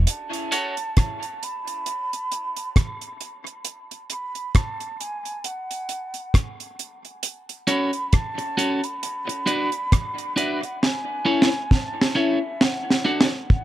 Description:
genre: dub reggae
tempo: 67 BPM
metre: 4/4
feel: swing 57% on 16ths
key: F# minor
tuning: A4 = 444 Hz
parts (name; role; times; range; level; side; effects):
- mellow hollow silver concert flute; melody; 0.1-13.6 s; E5 to B5; -30 LUFS; right 1 dB; dub echo
- deep reggae drum kit; drums; 0.1-13.6 s; hi-hat, kick drum, rim click, snare drum; -20 LUFS; equal; none
- electric guitar at the edge of break-up; accompaniment; 0.5-0.7, 7.7-13.3 s; C#4 to D5; -25 LUFS; equal; high-pass filter, dub echo
room: light reverb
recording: none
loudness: -21 LUFS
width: side -14 dB against mid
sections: 0.1-13.6 A section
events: break 0.1-7.2; drum fill 10.8-13.6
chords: 0.1 F#m; 1.9 N.C.; 7.2 F#m; 9.0 Bm; 10.8 A; 12.6 D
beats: | 0.08 0.97 1.87 2.76 | 3.65 4.55 5.45 6.34 | 7.24 8.13 9.03 9.92 | 10.81 11.71 12.60 13.50

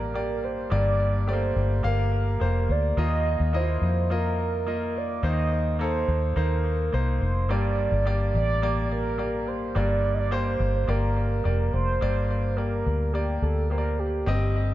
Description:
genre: piano-driven pop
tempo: 106 BPM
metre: 4/4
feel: straight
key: G minor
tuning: A4 = 440 Hz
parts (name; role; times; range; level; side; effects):
- mellow horn-like synth lead; melody; 0.0-14.6 s; G4 to Eb5; -29 LUFS; right 3 dB; chorus, tape echo
- clear concert grand piano; accompaniment; 0.0-14.7 s; G2 to F5; -29 LUFS; left 1 dB; tape echo
- vintage muted fingered electric bass; bass; 0.0-14.7 s; F1 to F2; -25 LUFS; equal; none
room: light reverb, small room reverb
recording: echo-heavy mix, nothing above 7.9 kHz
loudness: -23 LUFS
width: side -14 dB against mid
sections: 0.0-12.0 A section; 12.0-14.7 B section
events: none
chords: 0.0 Gm; 3.0 Ebsus2; 5.2 Cm7/Eb; 7.5 Gm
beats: 0.15 | 0.72 1.28 1.85 2.42 | 2.98 3.54 4.11 4.67 | 5.24 5.80 6.37 6.93 | 7.50 8.06 8.62 9.19 | 9.75 10.32 10.88 11.45 | 12.01 12.58 13.14 13.71 | 14.27

